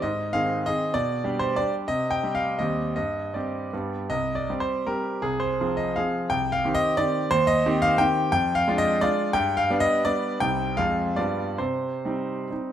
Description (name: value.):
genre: classical, romantic triple-time dance for piano with dotted rhythms.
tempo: 125-215 BPM.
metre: 3/4.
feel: rubato.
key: C minor.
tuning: A4 = 440 Hz.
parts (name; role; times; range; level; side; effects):
clear concert grand piano; solo; 0.0-12.7 s; C2 to G5; -22 LUFS; equal; none.
room: moderate recital hall reverb, RT60 1.7 s.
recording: close, detailed microphones.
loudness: -22 LUFS.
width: side -10 dB against mid.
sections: 0.0-4.1 A section; 4.1-12.7 B section.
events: none.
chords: 0.0 Ab; 0.9 G/B; 1.9 C5; 2.6 Cm/Eb; 3.0 Gsus4; 3.7 G; 4.1 C5; 5.2 Fm/C; 6.3 Cm; 7.3 Cm/Eb; 8.3 Ddim/F; 9.3 G; 10.4 Cm; 10.8 Fm; 11.2 G7; 11.6 Cm.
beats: | 0.03 0.33 0.66 | 0.95 1.25 1.57 | 1.89 2.23 2.60 | 2.96 3.35 3.73 | 4.10 4.49 4.87 | 5.23 5.59 5.95 | 6.30 6.64 6.98 | 7.32 7.65 8.01 | 8.33 8.67 9.02 | 9.35 9.69 10.06 | 10.41 10.78 11.18 | 11.59 12.04 12.50.